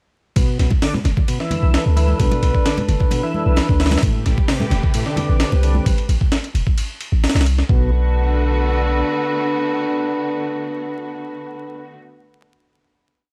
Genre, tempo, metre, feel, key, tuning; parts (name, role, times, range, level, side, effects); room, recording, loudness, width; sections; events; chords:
breakbeat, breaks; 131 BPM; 4/4; straight; B phrygian; A4 = 441 Hz
bright tonewheel organ; riff; 0.4-7.9 s; A2 to E3; -27 LUFS; equal; overdrive, chorus vibrato, slow rotary speaker, delay
warm 808-style bass; bass; 0.4-9.0 s; E1 to D2; -19 LUFS; equal; tube saturation
breakbeat sampler-style drum kit; drums; 0.4-7.8 s; hi-hat, kick drum, ride cymbal, snare drum; -22 LUFS; equal; small room ambience
congas; percussion; 0.4-5.8 s; -29 LUFS; equal
dark brass ensemble; stabs; 1.5-11.9 s; C4 to B4; -26 LUFS; equal; delay
rich studio string section; sustained chords; 4.0-11.9 s; C3 to B4; -30 LUFS; equal; vintage 12-bit sampler grit, sidechain pumping
small room reverb; vinyl crackle; -18 LUFS; mono
0.4-7.7 groove; 7.7-11.4 final chord
0.4 Bm7; 4.0 Am9; 7.7 Bm7